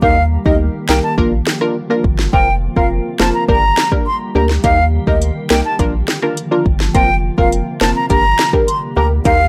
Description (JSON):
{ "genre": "dancehall", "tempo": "104 BPM", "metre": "4/4", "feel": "straight", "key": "Bb major", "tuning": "A4 = 441 Hz", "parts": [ { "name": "breathy silver concert flute", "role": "melody", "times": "0.0-9.5 s", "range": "Eb5 to C6", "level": "-19 LUFS", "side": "equal", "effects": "analog delay" }, { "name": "punchy chord stab", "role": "accompaniment", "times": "0.0-9.4 s", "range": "Bb3 to Bb4", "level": "-20 LUFS", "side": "equal", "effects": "chorus, phaser" }, { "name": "glassy FM pad", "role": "sustained chords", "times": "0.0-9.5 s", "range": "C3 to G4", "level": "-28 LUFS", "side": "equal", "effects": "ensemble chorus, built-in reverb, sidechain pumping" }, { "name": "warm sub bass", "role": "bass", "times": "0.0-9.5 s", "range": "F1 to Eb2", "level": "-20 LUFS", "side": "equal", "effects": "none" }, { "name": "afro-pop drum kit", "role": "drums", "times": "0.0-9.4 s", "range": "hi-hat, kick drum, rim click, snare drum", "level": "-19 LUFS", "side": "equal", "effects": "none" } ], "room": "little or no reverb", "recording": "dry, gritty hardware recording", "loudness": "-15 LUFS", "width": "mono", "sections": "0.0-9.5 A section", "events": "break 0.0-4.6", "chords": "0.0 Eb; 1.2 Bb; 2.3 Fsus4; 3.5 Gm; 4.6 Eb; 5.8 Bb; 6.9 Fsus4; 8.1 Gm", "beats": "| 0.02 0.60 1.18 1.75 | 2.33 2.91 3.48 4.06 | 4.64 5.22 5.79 6.37 | 6.95 7.52 8.10 8.68 | 9.26" }